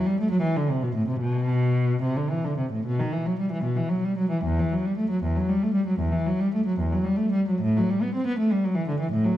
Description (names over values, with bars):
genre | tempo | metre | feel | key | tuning
classical, baroque-style suite movement for unaccompanied cello | 71-82 BPM (dotted quarters) | 12/8 | rubato | E minor | A4 = 439 Hz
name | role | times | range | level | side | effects
dark cello | solo | 0.0-9.4 s | E2 to C4 | -22 LUFS | equal | none
room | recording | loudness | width
wet recital hall reverb, RT60 1.4 s | dark, warm production | -22 LUFS | side -13 dB against mid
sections
0.0-9.4 A section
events
none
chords
none